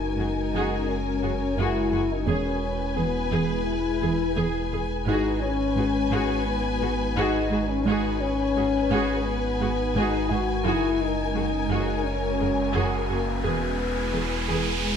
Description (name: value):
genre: cinematic, hybrid orchestral and electronic film score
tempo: 86 BPM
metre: 4/4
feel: straight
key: G# minor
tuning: A4 = 440 Hz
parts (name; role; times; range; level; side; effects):
- warm symphonic violin section; second line; 0.0-15.0 s; A#4 to G#5; -32 LUFS; left 4 dB; none
- glassy FM pad; sustained chords; 0.0-15.0 s; G#3 to B4; -32 LUFS; right 1 dB; ensemble chorus, built-in reverb, phaser
- mellow French horn section; sustained chords; 0.0-15.0 s; A#3 to F#4; -27 LUFS; left 4 dB; none
- sub bass with octave; bass; 0.0-15.0 s; E1 to G#1; -31 LUFS; right 1 dB; none
- rich studio viola section; accompaniment; 0.2-14.8 s; F#4 to G#4; -31 LUFS; right 1 dB; none
- warm symphonic cello section; bass; 0.2-14.6 s; E2 to G#2; -29 LUFS; right 4 dB; none
- riser; sound effects; 11.9-15.0 s; none; -32 LUFS; right 2 dB; none
room: moderate scoring stage reverb, RT60 1.5 s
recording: none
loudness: -22 LUFS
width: side -7 dB against mid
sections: 0.0-15.0 A section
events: riser 11.9-15.0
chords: 0.0 F#add9; 2.3 E; 5.1 G#m7; 10.6 F#add9; 13.4 E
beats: 0.18 0.88 1.57 | 2.27 2.97 3.67 4.37 | 5.06 5.76 6.46 7.16 | 7.85 8.55 9.25 9.95 | 10.64 11.34 12.04 12.74 | 13.44 14.13 14.83